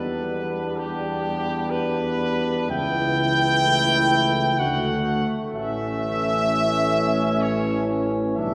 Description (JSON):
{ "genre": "classical, hymn-like piece for brass band", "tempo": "63 BPM", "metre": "3/4", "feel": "rubato", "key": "unclear", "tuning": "A4 = 440 Hz", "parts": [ { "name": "warm trumpet section", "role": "melody", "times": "0.0-8.5 s", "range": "G4 to G5", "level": "-26 LUFS", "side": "equal", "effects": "none" }, { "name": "warm flugelhorn", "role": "second line", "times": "0.0-8.5 s", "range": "C#4 to F#4", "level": "-32 LUFS", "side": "equal", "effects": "none" }, { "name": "bright trombone section", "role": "accompaniment", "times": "0.0-8.5 s", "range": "G3 to B3", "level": "-33 LUFS", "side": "equal", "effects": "none" }, { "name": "mellow trombone", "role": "accompaniment", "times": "0.0-8.5 s", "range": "D3 to G3", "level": "-32 LUFS", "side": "equal", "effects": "none" }, { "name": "mellow tuba", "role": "bass", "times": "0.0-8.5 s", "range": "A1 to E2", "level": "-30 LUFS", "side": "equal", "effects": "none" } ], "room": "wet church reverb, RT60 2.6 s", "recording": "recorded in a church or concert hall", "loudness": "-22 LUFS", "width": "mono", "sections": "0.0-8.5 A section", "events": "none", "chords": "0.0 Em7; 2.7 A/C#; 4.6 D; 5.5 A" }